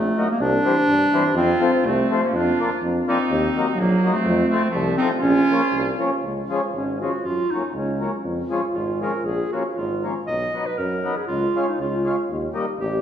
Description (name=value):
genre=alpine folk, alpine dance band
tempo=117-126 BPM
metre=2/4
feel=swing 54% on 8ths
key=Db major from 6.2 s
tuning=A4 = 437 Hz
part: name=warm clarinet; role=melody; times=0.0-13.0 s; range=F3 to Eb5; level=-22 LUFS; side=equal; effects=none
part: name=warm tuba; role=bass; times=0.0-13.0 s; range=Ab1 to G2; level=-25 LUFS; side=equal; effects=none
part: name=mellow accordion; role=accompaniment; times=0.2-12.7 s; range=E3 to F4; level=-25 LUFS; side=left 2 dB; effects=none
part: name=bright trumpet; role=second line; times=1.4-5.9 s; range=A3 to F4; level=-28 LUFS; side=right 3 dB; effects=none
room=wet recital hall reverb, RT60 1.9 s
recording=recorded in a church or concert hall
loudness=-19 LUFS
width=side -9 dB against mid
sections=0.0-6.2 A section; 6.2-13.0 B section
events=none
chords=0.4 C; 1.4 F; 2.3 Bb/F; 3.3 Ebm; 4.3 F; 5.2 Bbm; 6.2 Db; 7.2 Gb; 8.2 Db/F; 9.2 Bbm; 10.3 Cb; 11.3 Db; 12.3 Eb